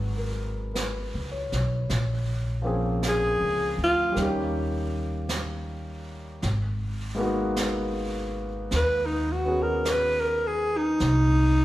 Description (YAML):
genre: jazz ballad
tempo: 53 BPM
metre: 4/4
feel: swing 66% on 8ths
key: G# minor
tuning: A4 = 440 Hz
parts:
  - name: warm concert grand piano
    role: accompaniment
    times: 0.0-11.0 s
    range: E#3 to C#5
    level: -30 LUFS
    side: left 1 dB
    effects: none
  - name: upright bass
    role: bass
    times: 0.0-11.6 s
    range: G#1 to D#2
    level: -28 LUFS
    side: equal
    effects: none
  - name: jazz brush drum kit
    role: drums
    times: 0.8-11.6 s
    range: brushed snare drum, hi-hat, snare drum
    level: -35 LUFS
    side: right 2 dB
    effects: none
  - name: mellow alto saxophone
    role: melody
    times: 3.1-11.6 s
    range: D#4 to B4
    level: -24 LUFS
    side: equal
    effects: none
room: moderate recital hall reverb, RT60 1.4 s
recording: recorded in a church or concert hall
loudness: -24 LUFS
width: side -15 dB against mid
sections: 0.0-11.6 A section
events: alto saxophone solo 0.0-11.6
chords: 0.0 C#m11; 1.9 A#m7; 4.2 D#7; 6.4 G#m9; 11.0 Cm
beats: 0.76 | 1.90 3.03 4.17 5.30 | 6.43 7.57 8.71 9.86 | 11.00